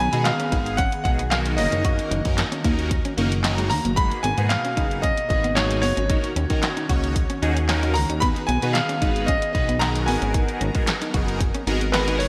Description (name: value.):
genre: dance-pop.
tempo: 113 BPM.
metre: 4/4.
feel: straight.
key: G# dorian.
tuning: A4 = 440 Hz.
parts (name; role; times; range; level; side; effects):
bright concert grand piano; melody; 0.0-12.3 s; B4 to B5; -28 LUFS; equal; delay.
airy breathy pad; sustained chords; 0.0-12.3 s; B2 to A#4; -35 LUFS; equal; none.
electric guitar at the edge of break-up; riff; 0.0-12.2 s; G#3 to F#4; -33 LUFS; equal; subtle chorus.
chorused synth bass; bass; 0.0-12.3 s; F#1 to D#3; -27 LUFS; equal; sidechain pumping.
big bright polysynth; accompaniment; 0.1-12.2 s; G#3 to C#5; -31 LUFS; equal; chorus, phaser, sidechain pumping.
house drum kit; drums; 0.1-12.3 s; handclaps, hi-hat, kick drum, snare drum; -27 LUFS; equal; gated reverb.
room: moderate lush hall reverb, RT60 2.6 s.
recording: bright 1980s-style digital production.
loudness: -22 LUFS.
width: mono.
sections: 0.0-12.3 A section.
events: none.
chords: 0.0 B6; 1.6 F#6; 4.0 G#m9; 6.1 D#m7; 8.2 B6; 10.1 G#m9.